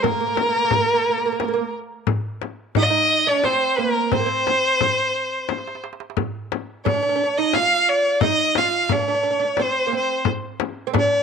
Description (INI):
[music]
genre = Arabic maqam ensemble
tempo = 88 BPM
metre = 3/4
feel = straight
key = C maqam bayati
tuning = A4 = 440 Hz
[part]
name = clear violin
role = melody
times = 0.0-11.2 s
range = Bb4 to F5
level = -19 LUFS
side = left 1 dB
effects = none
[part]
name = oud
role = second line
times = 0.0-11.2 s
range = Bb3 to F4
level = -25 LUFS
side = right 11 dB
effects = none
[part]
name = darbuka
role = percussion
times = 0.0-11.1 s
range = none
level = -31 LUFS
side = right 7 dB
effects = none
[part]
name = frame drum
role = percussion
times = 0.0-11.1 s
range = none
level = -24 LUFS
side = left 10 dB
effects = none
[sound]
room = moderate spring reverb, RT60 1.4 s, small room ambience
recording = 1960s-style stereo with parts hard left and right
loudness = -18 LUFS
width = side -6 dB against mid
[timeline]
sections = 0.0-11.2 A section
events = drum fill 5.5-6.2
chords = none